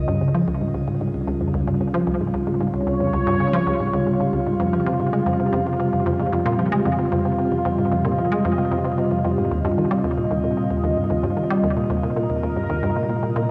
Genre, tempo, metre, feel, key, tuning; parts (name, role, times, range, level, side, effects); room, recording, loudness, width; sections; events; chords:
ambient, sequencer-driven space music; 113 BPM; 4/4; straight; Db lydian; A4 = 441 Hz
sweeping resonant pad; sustained chords; 0.0-13.5 s; C3 to Eb5; -23 LUFS; equal; chorus, shimmer reverb
resonant blip pluck; riff; 0.0-13.5 s; Db2 to Ab3; -26 LUFS; equal; chorus, analog delay, shimmer reverb
wet concert hall reverb, RT60 2.2 s; cassette tape; -21 LUFS; mono
0.0-13.5 A section
0.0 Dbadd9; 5.3 F7(no3); 9.5 Eb7